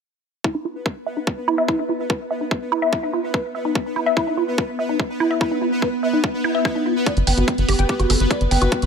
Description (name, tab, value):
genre	psychedelic trance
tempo	145 BPM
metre	4/4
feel	straight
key	unclear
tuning	A4 = 440 Hz
part	pulsing gated texture	sustained chords	0.8-8.9 s	B3 to B4	-24 LUFS	equal	chorus, built-in reverb, sidechain pumping
part	woody wave-folded pluck	riff	0.4-8.6 s	D#4 to G5	-22 LUFS	equal	chorus, auto-pan, sidechain pumping, ping-pong delay
part	electronic kick drum	drums	0.4-8.8 s	none	-22 LUFS	equal	high-pass filter on kick, high-pass filter on room
part	electronic hi-hat	drums	7.1-8.9 s	none	-25 LUFS	right 1 dB	low-pass filter on hats, low-pass filter on room
part	tight sequencer bass	bass	7.2-8.9 s	G1	-18 LUFS	equal	none
room	light reverb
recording	none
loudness	-18 LUFS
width	side -6 dB against mid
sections	0.4-8.9 A section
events	filter sweep on synth arpeggio sound 0.4-8.9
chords	0.4 E5; 7.1 G5